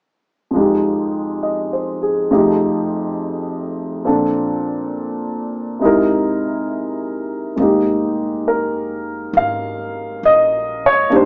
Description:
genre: jazz ballad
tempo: 68 BPM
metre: 4/4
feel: swing 69% on 8ths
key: F minor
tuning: A4 = 439 Hz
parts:
  - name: warm baby grand piano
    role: accompaniment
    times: 0.5-11.3 s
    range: F2 to F5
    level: -18 LUFS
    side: equal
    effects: none
  - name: upright bass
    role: bass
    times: 7.6-11.3 s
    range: F1 to C2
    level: -35 LUFS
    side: equal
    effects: none
room: moderate studio ambience, RT60 0.5 s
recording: band playing live in one room, small speaker sound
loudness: -18 LUFS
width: mono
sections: 0.5-7.6 A section; 7.6-11.3 B section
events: none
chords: 0.5 Fm7; 2.3 F7; 4.0 Bbmaj7; 5.8 C7alt; 7.6 Fm11

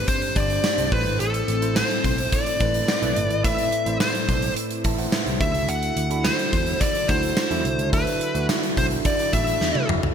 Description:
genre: 1980s-style pop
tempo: 107 BPM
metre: 4/4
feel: straight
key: unclear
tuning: A4 = 442 Hz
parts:
  - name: smooth overdriven lead guitar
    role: melody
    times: 0.0-9.9 s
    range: A4 to F#5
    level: -25 LUFS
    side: left 2 dB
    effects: shimmer reverb, digital delay
  - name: bell-like tine electric piano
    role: accompaniment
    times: 0.0-10.1 s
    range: G2 to B5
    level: -28 LUFS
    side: right 4 dB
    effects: shimmer reverb
  - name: ethereal airy pad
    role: sustained chords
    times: 0.0-10.1 s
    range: F#3 to E4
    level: -32 LUFS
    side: left 1 dB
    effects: ensemble chorus, built-in reverb, shimmer reverb
  - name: gated 80s drum kit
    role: drums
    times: 0.1-10.1 s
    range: hi-hat, kick drum, snare drum, tambourine, toms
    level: -24 LUFS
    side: equal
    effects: gated reverb
  - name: vintage muted picked electric bass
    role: bass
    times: 0.4-10.1 s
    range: F#1 to E2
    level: -27 LUFS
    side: equal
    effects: none
room: moderate plate reverb, RT60 1.3 s, studio ambience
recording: bright 1980s-style digital production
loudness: -20 LUFS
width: side -8 dB against mid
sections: 0.0-10.1 A section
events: drum fill 9.6-10.1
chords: 0.0 Gsus2; 0.9 Am; 5.4 Dadd9

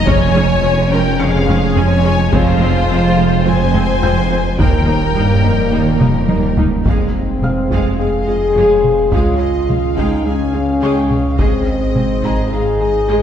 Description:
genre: cinematic, hybrid orchestral and electronic film score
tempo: 106 BPM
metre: 4/4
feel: straight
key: F minor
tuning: A4 = 442 Hz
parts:
  - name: rich symphonic violin section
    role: melody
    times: 0.0-13.2 s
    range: C5 to Ab5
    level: -25 LUFS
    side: left 4 dB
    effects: none
  - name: rich symphonic violin section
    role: second line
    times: 0.0-13.2 s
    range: F4 to Ab5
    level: -22 LUFS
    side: left 2 dB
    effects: none
  - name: warbly tape-like pad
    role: sustained chords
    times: 0.0-13.2 s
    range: F3 to F5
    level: -25 LUFS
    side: equal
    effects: chorus, built-in reverb
  - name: warm French horn section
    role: sustained chords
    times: 0.0-13.2 s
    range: G3 to Ab4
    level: -19 LUFS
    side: left 2 dB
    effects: none
  - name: wide detuned saw bass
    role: bass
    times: 0.0-13.2 s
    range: Eb1 to Db2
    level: -21 LUFS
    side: equal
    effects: chorus
  - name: felt-muted upright piano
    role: texture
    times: 0.0-13.2 s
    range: Db5 to Db7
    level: -32 LUFS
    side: left 2 dB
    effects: none
  - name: rich symphonic viola section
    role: accompaniment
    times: 0.1-13.2 s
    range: Ab3 to Ab4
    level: -24 LUFS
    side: right 2 dB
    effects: none
  - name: thumb-piano-like synth pluck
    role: arpeggios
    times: 0.1-13.2 s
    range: Db3 to Ab4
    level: -26 LUFS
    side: right 3 dB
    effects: none
  - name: warm symphonic cello section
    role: bass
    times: 0.1-13.2 s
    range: Db2 to Ab2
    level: -20 LUFS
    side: right 2 dB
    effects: none
  - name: warm symphonic double bass section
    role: bass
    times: 0.1-13.2 s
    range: F1 to Eb2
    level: -22 LUFS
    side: right 3 dB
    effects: none
  - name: solo taiko drums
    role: drums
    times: 0.1-12.8 s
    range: none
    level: -19 LUFS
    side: equal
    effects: none
room: wet scoring stage reverb, RT60 1.8 s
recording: heard from further back in the room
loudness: -12 LUFS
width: side -9 dB against mid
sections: 0.0-6.9 A section; 6.9-13.2 B section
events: drum fill 6.0-6.9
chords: 0.1 Db/F; 2.3 Fm; 4.6 Eb; 6.9 Fm; 9.1 Db; 11.4 Ab

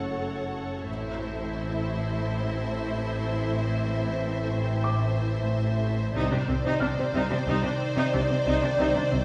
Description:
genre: cinematic, suspense film score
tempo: 91 BPM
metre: 4/4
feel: straight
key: unclear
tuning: A4 = 439 Hz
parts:
  - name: warm symphonic violin section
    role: melody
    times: 0.0-9.2 s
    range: D5 to F#5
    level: -39 LUFS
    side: equal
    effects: none
  - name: rich symphonic violin section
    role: second line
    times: 0.0-9.2 s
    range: C5 to C#5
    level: -38 LUFS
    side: equal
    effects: none
  - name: rich symphonic viola section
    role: accompaniment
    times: 0.0-9.2 s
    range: C4 to A4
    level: -36 LUFS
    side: equal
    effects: none
  - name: mellow French horn section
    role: sustained chords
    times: 0.0-9.2 s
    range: Eb3 to D5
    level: -36 LUFS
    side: equal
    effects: none
  - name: soft additive organ-like pad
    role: sustained chords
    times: 0.0-9.2 s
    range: Eb4 to A5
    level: -43 LUFS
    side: equal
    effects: ensemble chorus, built-in reverb
  - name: marimba with medium mallets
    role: riff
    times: 0.0-9.2 s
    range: F#2 to C3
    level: -33 LUFS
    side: equal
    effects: none
  - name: clear chamber double bass section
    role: bass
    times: 0.0-9.2 s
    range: F#1 to C2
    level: -36 LUFS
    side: equal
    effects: none
  - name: warm symphonic cello section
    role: bass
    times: 0.0-9.2 s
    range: F#2 to C3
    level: -34 LUFS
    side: equal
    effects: none
  - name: felt-muted upright piano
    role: texture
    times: 0.0-9.2 s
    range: D6 to F#6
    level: -42 LUFS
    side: equal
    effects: none
room: moderate scoring stage reverb, RT60 1.6 s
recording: none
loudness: -27 LUFS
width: mono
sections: 0.0-9.2 A section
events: none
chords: 0.0 F#m; 0.9 Am; 6.2 Cmadd9

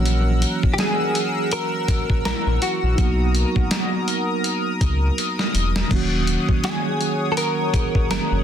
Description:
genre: contemporary R&B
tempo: 82 BPM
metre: 4/4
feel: swing 58% on 16ths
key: unclear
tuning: A4 = 441 Hz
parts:
  - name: mellow tine electric piano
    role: accompaniment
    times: 0.0-8.4 s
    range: D#3 to C#5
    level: -26 LUFS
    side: right 5 dB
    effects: medium stereo tremolo
  - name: chorused pulse-width pad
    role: sustained chords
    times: 0.0-8.4 s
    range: A#4 to E6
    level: -28 LUFS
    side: left 2 dB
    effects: none
  - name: sub bass with octave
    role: bass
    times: 0.0-8.4 s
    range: D#1 to C#2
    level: -20 LUFS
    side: left 1 dB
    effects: none
  - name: dusty soul sampler-style drum kit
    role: drums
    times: 0.1-8.3 s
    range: crash cymbal, hi-hat, kick drum, snare drum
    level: -23 LUFS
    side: equal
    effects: none
  - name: direct-recorded clean electric guitar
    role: melody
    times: 0.7-8.4 s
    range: F#4 to A#4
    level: -25 LUFS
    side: left 1 dB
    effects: analog chorus, digital delay
  - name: synth chime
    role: texture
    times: 1.5-8.4 s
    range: D#4 to G#4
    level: -37 LUFS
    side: left 2 dB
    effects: none
room: little or no reverb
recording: dense, heavily limited modern master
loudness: -18 LUFS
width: side -9 dB against mid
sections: 0.0-8.4 A section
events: drum fill 5.2-5.9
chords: 0.0 F#7/A#; 3.0 Bmaj7; 5.9 D#m7

